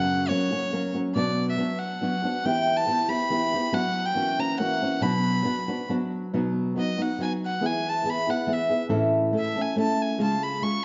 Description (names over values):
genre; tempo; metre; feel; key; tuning
mexican folk, mariachi; 140 BPM; 3/4; rubato; B minor; A4 = 440 Hz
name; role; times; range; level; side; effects
clear violin; melody; 0.0-10.8 s; C#5 to C#6; -30 LUFS; equal; none
flamenco guitar; accompaniment; 0.0-10.8 s; F#2 to A4; -27 LUFS; equal; none
room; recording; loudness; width
moderate recital hall reverb, RT60 1.7 s; dark, warm production, nothing above 7.5 kHz; -26 LUFS; mono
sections
0.0-6.3 A section; 6.3-10.8 B section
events
none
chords
0.0 F#; 1.2 Bm; 2.5 Em; 3.7 Bm/F#; 4.2 F#7; 5.0 Bm; 6.3 B; 7.6 E; 8.9 A; 10.2 C#